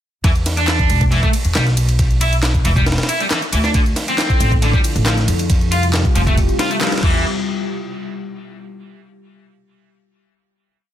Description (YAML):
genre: breakbeat, breaks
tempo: 137 BPM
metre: 4/4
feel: straight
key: E phrygian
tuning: A4 = 440 Hz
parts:
  - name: overdriven electric guitar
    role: riff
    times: 0.2-7.2 s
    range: D3 to F4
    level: -21 LUFS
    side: equal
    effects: vintage 12-bit sampler grit, ping-pong delay
  - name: upright bass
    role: bass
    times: 0.2-7.2 s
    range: E1 to F2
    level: -18 LUFS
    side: equal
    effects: none
  - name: breakbeat sampler-style drum kit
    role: drums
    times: 0.2-7.1 s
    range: crash cymbal, kick drum, ride cymbal, snare drum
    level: -18 LUFS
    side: equal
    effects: studio reverb
  - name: house drum kit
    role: drums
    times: 0.2-7.0 s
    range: handclaps, hi-hat, ride cymbal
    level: -26 LUFS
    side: left 1 dB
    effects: overdrive, studio reverb
  - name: warbly tape-like pad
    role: sustained chords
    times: 4.1-7.2 s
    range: C3 to A4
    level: -24 LUFS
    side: left 2 dB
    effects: chorus, built-in reverb, vintage 12-bit sampler grit, sidechain pumping
room: light reverb, digital ambience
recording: dense, heavily limited modern master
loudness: -14 LUFS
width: side -11 dB against mid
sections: 0.2-7.2 drop; 7.2-9.0 final hit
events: drop 0.2-7.2; band accent 6.8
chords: 0.2 E5; 3.7 Dmadd9; 5.5 Fsus2; 7.0 Em; 7.2 N.C.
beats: | 0.24 0.68 1.12 1.56 | 2.00 2.43 2.87 3.31 | 3.75 4.18 4.62 5.06 | 5.50 5.94 6.37 6.81